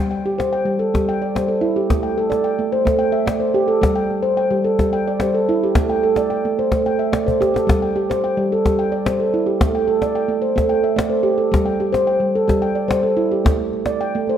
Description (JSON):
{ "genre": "world meditative, meditative tuned percussion", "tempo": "218 BPM (eighths)", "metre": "7/8", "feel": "straight", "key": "unclear", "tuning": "A4 = 440 Hz", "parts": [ { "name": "handpan", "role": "arpeggios", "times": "0.0-14.4 s", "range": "G3 to G5", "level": "-17 LUFS", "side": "right 1 dB", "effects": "none" }, { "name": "cajon", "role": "percussion", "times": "0.1-14.3 s", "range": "none", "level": "-21 LUFS", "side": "left 2 dB", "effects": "none" } ], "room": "wet echo chamber reverb, RT60 1.6 s, small room ambience", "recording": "none", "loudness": "-16 LUFS", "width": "side -9 dB against mid", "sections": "0.0-14.4 A section", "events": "drum fill 7.3-7.7", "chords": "0.0 G5; 1.9 Am; 3.8 G5; 5.8 Am; 7.7 G5; 9.6 Am; 11.5 G5; 13.4 N.C." }